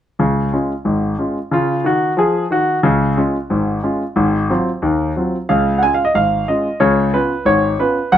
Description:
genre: jazz, stride piano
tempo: 182 BPM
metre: 4/4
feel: swing 63% on 8ths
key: Db major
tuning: A4 = 440 Hz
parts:
  - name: clear concert grand piano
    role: solo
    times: 0.2-8.2 s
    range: Gb1 to Ab5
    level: -14 LUFS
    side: equal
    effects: none
room: moderate club reverb, RT60 0.7 s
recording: none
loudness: -14 LUFS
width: side -10 dB against mid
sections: 0.2-5.5 A section; 5.5-8.2 B section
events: none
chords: 0.2 Db; 1.5 Gb5/Db; 2.8 Db; 4.2 Ab6; 5.5 Db; 6.8 Db7

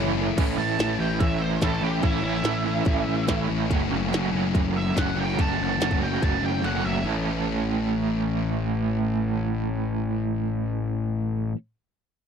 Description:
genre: classic rock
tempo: 144 BPM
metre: 4/4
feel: straight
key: A major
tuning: A4 = 442 Hz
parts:
  - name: crunchy overdriven guitar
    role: riff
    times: 0.0-11.6 s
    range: F#2 to A4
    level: -28 LUFS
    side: right 18 dB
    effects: tremolo
  - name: sludgy distorted guitar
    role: riff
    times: 0.0-11.6 s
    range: A2 to A4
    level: -28 LUFS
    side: left 9 dB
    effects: overdrive
  - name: fuzz picked electric bass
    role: bass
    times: 0.0-11.5 s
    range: F#1 to A1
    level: -29 LUFS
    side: equal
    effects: overdrive
  - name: glitchy drum kit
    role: drums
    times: 0.4-6.7 s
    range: crash cymbal, hi-hat, kick drum, snare drum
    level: -25 LUFS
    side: equal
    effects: overdrive
  - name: octave-fuzz lead guitar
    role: melody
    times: 0.6-7.0 s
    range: E4 to A5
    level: -31 LUFS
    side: right 4 dB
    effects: wah, distortion
room: little or no reverb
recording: dry, close 1970s-style studio recording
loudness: -22 LUFS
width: side -7 dB against mid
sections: 0.4-7.0 A section; 7.0-10.4 B section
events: break 0.0-0.4; lead electric guitar solo 0.4-7.0; kick and snare drop out 6.6-7.0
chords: 0.4 A; 3.7 F#m; 7.0 A

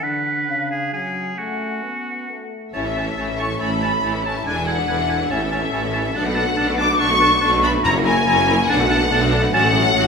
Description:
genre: classical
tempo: 141 BPM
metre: 4/4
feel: rubato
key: A major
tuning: A4 = 439 Hz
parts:
  - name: bright oboe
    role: second line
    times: 0.0-9.7 s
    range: F#4 to A#5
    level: -25 LUFS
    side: right 2 dB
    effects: none
  - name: clear clarinet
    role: second line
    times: 0.0-9.7 s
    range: C#4 to E4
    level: -29 LUFS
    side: left 1 dB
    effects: none
  - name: mellow hollow small flute group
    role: second line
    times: 0.0-10.1 s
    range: E5 to D6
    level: -23 LUFS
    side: left 2 dB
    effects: none
  - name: mellow French horn section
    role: sustained chords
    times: 0.0-10.1 s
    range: C#3 to E4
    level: -27 LUFS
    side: left 2 dB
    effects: none
  - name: rich studio violin section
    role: melody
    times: 2.7-10.1 s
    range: E5 to D6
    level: -23 LUFS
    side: left 3 dB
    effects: none
  - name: bright symphonic violin section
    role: second line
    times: 2.7-10.1 s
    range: F#4 to E5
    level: -28 LUFS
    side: left 1 dB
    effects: none
  - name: clear symphonic viola section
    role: accompaniment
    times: 2.7-10.1 s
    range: D3 to A4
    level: -27 LUFS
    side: right 1 dB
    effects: none
  - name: mellow tuba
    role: bass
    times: 2.7-10.1 s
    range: E1 to B1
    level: -28 LUFS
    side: right 3 dB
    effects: none
  - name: rich symphonic cello section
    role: bass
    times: 2.7-10.1 s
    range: E2 to B2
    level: -28 LUFS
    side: right 3 dB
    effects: none
  - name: warm studio double bass section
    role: bass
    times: 2.7-10.1 s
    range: E1 to B1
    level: -28 LUFS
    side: right 2 dB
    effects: none
  - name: timpani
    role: percussion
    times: 7.8-8.4 s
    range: F#2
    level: -30 LUFS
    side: left 1 dB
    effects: none
room: wet scoring stage reverb, RT60 2.0 s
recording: minimal, uncompressed stereo recording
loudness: -17 LUFS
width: side -5 dB against mid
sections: 0.0-2.7 A section; 2.7-10.1 B section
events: none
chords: 0.0 Bm/D; 0.5 C#7b9; 0.9 F#m; 2.7 A; 4.5 E7; 5.3 A; 6.2 Bm7; 7.8 F#7; 8.7 Bm7; 9.5 F#m/A

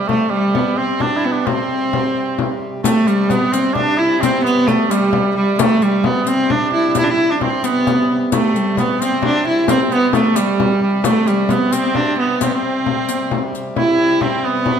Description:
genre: medieval dance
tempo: 88 BPM (dotted quarters)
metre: 6/8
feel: straight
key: C major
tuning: A4 = 444 Hz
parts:
  - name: warm viola da gamba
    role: melody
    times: 0.0-14.8 s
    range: G3 to E4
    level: -16 LUFS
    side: equal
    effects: none
  - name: warm cor anglais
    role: second line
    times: 0.0-14.8 s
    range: G3 to E4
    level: -20 LUFS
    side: right 5 dB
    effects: none
  - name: hand-pumped harmonium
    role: drone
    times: 0.0-14.8 s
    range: C3 to G3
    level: -26 LUFS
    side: right 1 dB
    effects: none
  - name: frame drum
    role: percussion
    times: 0.1-14.8 s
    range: none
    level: -22 LUFS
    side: left 5 dB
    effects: none
  - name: riq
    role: percussion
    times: 2.9-13.7 s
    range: none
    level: -27 LUFS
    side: left 5 dB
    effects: none
room: wet recital hall reverb, RT60 1.2 s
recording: none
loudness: -14 LUFS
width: side -8 dB against mid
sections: 0.0-2.8 A section; 2.8-13.8 A section; 13.8-14.8 B section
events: none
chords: none

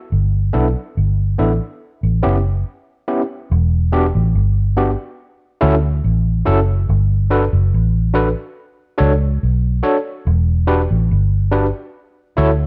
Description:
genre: lovers rock reggae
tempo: 71 BPM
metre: 4/4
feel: straight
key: unclear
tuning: A4 = 440 Hz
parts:
  - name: vintage muted fingered electric bass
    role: bass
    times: 0.1-12.7 s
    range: E1 to D2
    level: -17 LUFS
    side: equal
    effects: none
  - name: overdriven tine electric piano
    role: accompaniment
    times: 0.5-12.5 s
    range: B3 to C#5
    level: -21 LUFS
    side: equal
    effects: medium tremolo
room: light reverb, digital ambience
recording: dark, warm production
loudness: -17 LUFS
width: mono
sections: 0.0-3.5 A section; 3.5-12.7 B section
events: none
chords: 0.1 G6; 1.8 A7; 3.5 Em9; 5.2 Dmaj7; 6.9 Gmaj9; 8.6 Bm7; 10.3 Em9; 11.9 Dmaj7

